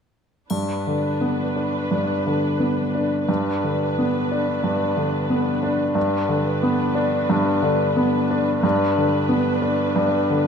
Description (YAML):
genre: classical, romantic movement for piano and orchestra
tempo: 89 BPM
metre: 4/4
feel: rubato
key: G major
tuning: A4 = 440 Hz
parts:
  - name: clear baby grand piano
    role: melody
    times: 0.5-10.5 s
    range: G2 to D4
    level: -19 LUFS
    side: left 1 dB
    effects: none
  - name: rich symphonic viola section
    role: accompaniment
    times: 0.5-10.5 s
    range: D4 to B4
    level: -27 LUFS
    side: right 3 dB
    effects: none
  - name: triangle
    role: percussion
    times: 0.5-1.9 s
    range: none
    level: -40 LUFS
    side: left 5 dB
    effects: none
room: light reverb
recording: dark, warm production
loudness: -19 LUFS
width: side -6 dB against mid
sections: 0.5-10.5 A section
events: none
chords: 0.5 G